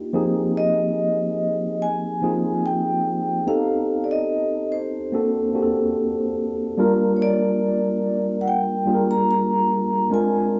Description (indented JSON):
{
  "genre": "soul",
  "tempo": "72 BPM",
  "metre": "4/4",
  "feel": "swing 54% on 16ths",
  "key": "unclear",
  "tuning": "A4 = 440 Hz",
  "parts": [
    { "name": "mellow tine electric piano", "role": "accompaniment", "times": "0.0-10.6 s", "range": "F3 to Bb4", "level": "-23 LUFS", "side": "equal", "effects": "none" },
    { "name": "vibraphone with medium mallets", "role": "melody", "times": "0.6-10.6 s", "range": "C5 to Bb5", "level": "-26 LUFS", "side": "equal", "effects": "none" }
  ],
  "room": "wet studio reverb, RT60 0.6 s",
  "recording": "band playing live in one room, nothing above 7.7 kHz",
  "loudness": "-22 LUFS",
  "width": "mono",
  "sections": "0.1-10.6 A section",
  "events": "none",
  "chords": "0.1 Fm11; 3.5 Am7b5; 5.1 D7b13; 6.8 Gm7"
}